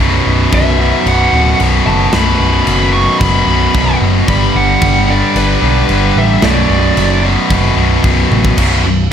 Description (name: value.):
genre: heavy metal.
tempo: 112 BPM.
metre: 4/4.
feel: straight.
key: B minor.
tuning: A4 = 440 Hz.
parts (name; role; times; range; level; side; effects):
heavy high-gain guitar; riff; 0.0-9.1 s; B1 to G3; -16 LUFS; left 10 dB; distortion.
heavy high-gain guitar; riff; 0.0-9.1 s; B1 to G3; -19 LUFS; equal; distortion.
tight distorted guitar; riff; 0.0-9.1 s; B1 to G3; -18 LUFS; right 11 dB; distortion.
overdriven picked electric bass; bass; 0.0-9.1 s; B0 to B1; -14 LUFS; equal; none.
high-gain lead guitar; melody; 0.5-7.2 s; B4 to C#6; -16 LUFS; right 1 dB; distortion.
tight metal drum kit; drums; 0.5-8.7 s; crash cymbal, kick drum, snare drum, toms; -18 LUFS; equal; none.
room: little or no reverb.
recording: none.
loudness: -9 LUFS.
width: side -8 dB against mid.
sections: 0.0-8.6 A section.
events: half time 0.0-8.6; drum fill 8.3.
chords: 0.0 B5; 4.3 G; 6.4 Bm; 8.6 B5.